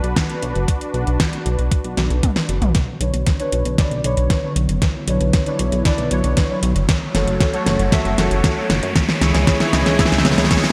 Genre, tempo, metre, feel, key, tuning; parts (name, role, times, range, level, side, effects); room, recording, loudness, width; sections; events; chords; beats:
synthwave; 116 BPM; 4/4; straight; A4 = 440 Hz
warm analog pad; sustained chords; 0.0-10.7 s; D3 to C#5; -28 LUFS; equal; chorus, sidechain pumping
chorused synth bass; bass; 0.0-10.5 s; F#1 to F#2; -22 LUFS; equal
pop drum kit; drums; 0.0-10.7 s; hi-hat, snare drum, toms; -23 LUFS; equal; gated reverb
electronic kick drum; drums; 0.2-10.6 s; -21 LUFS; equal; overdrive
riser; sound effects; 5.3-10.7 s; -32 LUFS; equal
analog synth brass; stabs; 3.0-10.7 s; D4 to E5; -26 LUFS; equal; chorus, digital delay
moderate lush hall reverb, RT60 1.8 s; bright 1980s-style digital production; -18 LUFS; mono
0.0-2.7 A section; 2.7-10.7 B section
drum fill 2.0-2.7, 2.7-10.7; filter sweep on analog synth pad 2.7-10.7; filter sweep on analog polysynth 2.7-10.7; riser 5.7-10.7
0.0 Bm; 2.7 Bmadd9; 6.9 F#m; 9.0 C#m
0.16 | 0.68 1.20 1.72 2.23 | 2.75 3.27 3.78 4.30 | 4.82 5.34 5.85 6.37 | 6.89 7.41 7.92 8.44 | 8.96 9.47 9.99 10.51